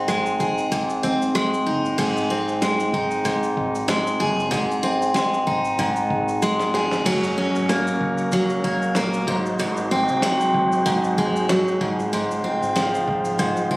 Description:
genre	acoustic pop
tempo	95 BPM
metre	4/4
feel	swing 55% on 16ths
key	unclear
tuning	A4 = 442 Hz
part	picked steel-string acoustic guitar	accompaniment	0.0-13.8 s	Ab2 to Ab4	-20 LUFS	equal	none
part	upright bass	bass	0.0-13.8 s	Gb1 to Ab2	-34 LUFS	equal	none
part	dusty soul sampler-style drum kit	drums	0.1-13.8 s	crash cymbal, kick drum, rim click, shaker, snare drum	-30 LUFS	equal	none
part	bright tonewheel organ	sustained chords	7.0-13.8 s	Db3 to C5	-30 LUFS	right 1 dB	chorus vibrato, fast rotary speaker
room	moderate studio reverb, RT60 0.8 s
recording	recorded on a phone in the room, studio reverb, compression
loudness	-19 LUFS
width	side -21 dB against mid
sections	0.0-2.0 A section; 2.0-7.1 B section; 7.1-13.8 C section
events	drum fill 6.4-7.1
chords	0.0 Ab; 7.1 Gbadd9; 9.3 Ab7; 11.8 Dbmaj7

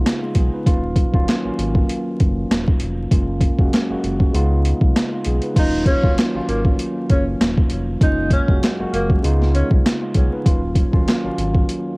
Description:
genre	hip hop, boom-bap hip-hop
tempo	98 BPM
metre	4/4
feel	swing 55% on 16ths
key	Eb minor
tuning	A4 = 441 Hz
part	tine electric piano	accompaniment	0.0-12.0 s	Eb2 to Cb5	-23 LUFS	equal	fast stereo tremolo, cassette tape, high-pass filter, low-pass filter
part	sub bass with octave	bass	0.0-11.6 s	Eb1 to Db2	-22 LUFS	equal	none
part	boom bap sampler-style drum kit	drums	0.1-11.8 s	crash cymbal, handclaps, hi-hat, kick drum, snare drum	-17 LUFS	equal	overdrive, vintage 12-bit sampler grit, cassette tape
part	breathy tenor saxophone	melody	5.6-9.7 s	Bb3 to Eb4	-24 LUFS	equal	high-pass filter, low-pass filter, cassette tape, analog delay
room	light reverb, digital ambience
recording	home recording on cassette, vinyl crackle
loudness	-16 LUFS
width	side -28 dB against mid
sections	0.0-5.6 A section; 5.6-12.0 B section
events	none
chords	0.0 Db7; 0.7 Ebm7; 3.1 Gbmaj7; 4.3 Db7; 5.6 Ebm7; 8.0 Gbmaj7; 9.2 Db7; 10.5 Ebm7

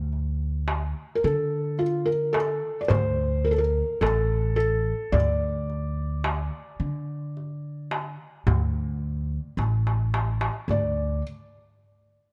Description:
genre	Turkish makam ensemble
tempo	108 BPM (eighths)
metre	10/8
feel	straight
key	unclear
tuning	A4 = 440 Hz
part	upright bass	bass	0.0-11.2 s	A1 to D3	-29 LUFS	equal	none
part	darbuka	percussion	0.1-11.2 s	none	-30 LUFS	equal	none
part	felt-muted upright piano	melody	1.2-11.2 s	F4 to D5	-28 LUFS	equal	none
room	little or no reverb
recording	dark, warm production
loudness	-26 LUFS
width	mono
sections	0.0-10.7 A section; 10.7-12.3 B section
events	drum fill 9.6-10.7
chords	none

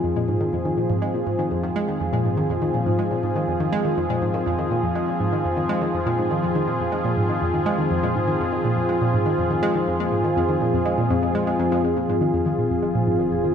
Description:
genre	ambient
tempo	122 BPM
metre	4/4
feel	straight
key	F minor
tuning	A4 = 438 Hz
part	sweeping resonant pad	sustained chords	0.0-13.5 s	F3 to Ab4	-22 LUFS	equal	chorus
part	analog pluck	riff	0.0-13.5 s	F2 to Ab3	-23 LUFS	equal	chorus, ping-pong delay
part	concert harp	arpeggios	11.8-13.5 s	F4 to Ab5	-42 LUFS	equal	none
part	fat analog bass	bass	11.8-13.5 s	F1	-46 LUFS	right 1 dB	none
room	wet echo chamber reverb, RT60 2.5 s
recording	echo-heavy mix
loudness	-20 LUFS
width	side -8 dB against mid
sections	0.0-11.8 A section; 11.8-13.5 B section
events	filter sweep on synth arpeggio sound 11.8-13.5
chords	0.0 Fm

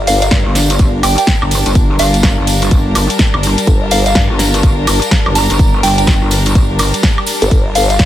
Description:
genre	bass house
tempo	125 BPM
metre	4/4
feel	swing 62% on 16ths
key	G minor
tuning	A4 = 439 Hz
part	warm studio string section	sustained chords	0.0-8.1 s	G3 to Bb4	-21 LUFS	left 1 dB	sidechain pumping
part	vowel-sweep wobble bass	bass	0.0-0.3, 3.7-4.1, 7.4-8.0 s	G1	-14 LUFS	equal	chorus, tube saturation, sidechain pumping
part	ethereal airy pad	texture	0.0-8.1 s	G4 to A5	-23 LUFS	left 2 dB	ensemble chorus, built-in reverb, sidechain pumping
part	soft synth bell	melody	0.1-8.0 s	F5 to Bb5	-18 LUFS	right 1 dB	chorus, phaser, dub echo
part	house drum kit	drums	0.1-8.1 s	hi-hat, ride cymbal, snare drum, woodblock	-17 LUFS	equal	none
part	tambourine	percussion	0.1-8.1 s	none	-23 LUFS	right 3 dB	none
part	pulsing pluck wobble bass	bass	0.3-8.1 s	G1 to G2	-14 LUFS	equal	chorus, overdrive, sidechain pumping
part	electronic kick drum	drums	0.3-8.1 s	none	-12 LUFS	equal	none
room	digital ambience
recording	none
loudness	-9 LUFS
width	side -12 dB against mid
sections	0.0-8.1 A section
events	none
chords	0.0 Gm

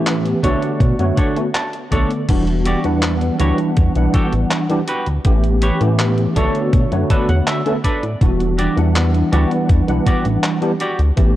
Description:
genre	vaporwave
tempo	81 BPM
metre	4/4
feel	straight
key	E dorian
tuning	A4 = 440 Hz
part	tine electric piano	accompaniment	0.0-11.4 s	D3 to F#5	-18 LUFS	equal	medium stereo tremolo, ensemble chorus, tape echo
part	chorused synth bass	bass	0.0-11.4 s	E1 to B2	-18 LUFS	equal	none
part	detuned 8-bit digital drum machine	drums	0.1-11.3 s	crash cymbal, handclaps, hi-hat	-25 LUFS	equal	none
part	semi-hollow electric guitar	riff	0.4-11.0 s	D4 to A5	-25 LUFS	right 1 dB	analog chorus, low-pass filter, tape echo
part	electronic kick drum	drums	0.4-11.3 s	none	-16 LUFS	equal	none
room	light reverb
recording	dry, gritty hardware recording, cassette tape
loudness	-14 LUFS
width	side -14 dB against mid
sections	0.0-11.4 A section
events	clean electric guitar fill 1.2-2.3, 6.7-8.2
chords	0.4 Bm9; 2.3 Em9; 5.3 A9; 6.4 Bm9; 8.2 Em9

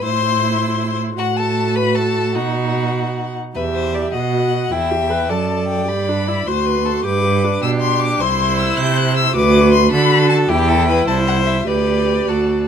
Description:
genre	quick classical-period movement for string quartet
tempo	103 BPM (dotted quarters)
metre	6/8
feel	straight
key	E minor, G major from 8.2 s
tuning	A4 = 441 Hz
part	rich violin	melody	0.0-12.7 s	D5 to G6	-21 LUFS	left 8 dB	none
part	clear violin	second line	0.0-12.7 s	F#4 to E5	-22 LUFS	left 4 dB	none
part	dark viola	accompaniment	0.0-12.7 s	D4 to B4	-21 LUFS	right 2 dB	none
part	rich cello	bass	0.0-12.7 s	C2 to D3	-19 LUFS	right 4 dB	none
room	little or no reverb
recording	close, detailed microphones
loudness	-14 LUFS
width	side -8 dB against mid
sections	0.0-3.6 A section; 3.6-12.7 B section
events	none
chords	0.0 Am; 1.2 F#madd11/A; 2.4 B; 3.6 Em; 4.1 B; 4.7 Em; 5.9 G; 6.5 D7; 7.0 G; 8.2 C; 9.3 D; 10.5 Em; 11.1 C; 11.7 G/D

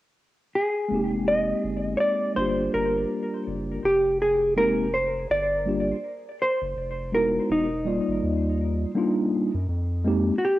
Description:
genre	hip hop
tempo	82 BPM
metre	4/4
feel	swing 60% on 16ths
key	F dorian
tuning	A4 = 439 Hz
part	hollow-body jazz guitar	melody	0.6-10.6 s	D#4 to Eb5	-24 LUFS	equal	cassette tape, tape echo
part	mellow tine electric piano	accompaniment	0.9-10.3 s	G3 to D5	-25 LUFS	equal	medium stereo tremolo
part	round analog bass	bass	0.9-10.3 s	E1 to Gb2	-30 LUFS	equal	none
room	moderate spring reverb, RT60 1.3 s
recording	home recording on cassette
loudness	-22 LUFS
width	side -16 dB against mid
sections	0.9-3.8 A section; 3.8-10.6 B section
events	none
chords	0.0 N.C.; 0.9 Fm11; 2.4 Gm7; 3.8 Fm11; 5.3 Gm7; 6.8 Bbsus2/F; 7.5 Emaj9; 8.2 Ebmaj9; 9.7 Fm11

